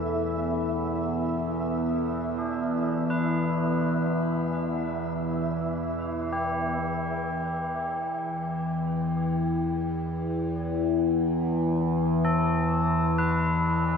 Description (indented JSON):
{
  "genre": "dark ambient drone",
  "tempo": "free time",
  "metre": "none",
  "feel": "none",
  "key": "E minor",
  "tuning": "A4 = 440 Hz",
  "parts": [
    { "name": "deep dark ambient pad", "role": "sustained chords", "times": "0.0-14.0 s", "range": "B3 to E5", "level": "-31 LUFS", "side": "right 1 dB", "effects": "chorus, built-in reverb, shimmer reverb" },
    { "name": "overtone-sweeping drone", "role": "drone", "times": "0.0-14.0 s", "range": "E2 to E3", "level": "-26 LUFS", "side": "left 1 dB", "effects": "chorus, built-in reverb" },
    { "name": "flickering grainy texture", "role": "texture", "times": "0.0-6.8 s", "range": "E5", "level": "-38 LUFS", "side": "right 1 dB", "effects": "built-in reverb, shimmer reverb" },
    { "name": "tubular bells", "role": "arpeggios", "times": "2.4-14.0 s", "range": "D4 to B4", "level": "-32 LUFS", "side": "equal", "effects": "diffuse ambient delay, shimmer reverb" }
  ],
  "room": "wet cathedral reverb, RT60 6.4 s",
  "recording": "in a vast, echoing space",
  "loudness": "-25 LUFS",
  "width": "side -6 dB against mid",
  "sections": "0.0-6.8 A section; 6.8-14.0 B section",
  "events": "none",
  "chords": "0.0 E5; 6.8 Em"
}